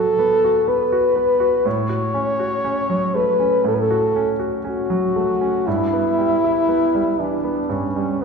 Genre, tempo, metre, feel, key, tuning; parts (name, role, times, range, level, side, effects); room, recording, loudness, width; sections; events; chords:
classical, romantic duo for French horn and grand piano; 60 BPM; 4/4; rubato; A4 = 440 Hz
clear French horn; melody; 0.0-8.2 s; B3 to C#5; -18 LUFS; left 1 dB
clear concert grand piano; accompaniment; 0.0-8.2 s; G2 to F#4; -22 LUFS; right 2 dB
wet recital hall reverb, RT60 1.3 s; recorded in a church or concert hall; -17 LUFS; side -5 dB against mid
0.0-8.2 A section
0.0 B5; 1.7 F#m/A; 5.7 Em/G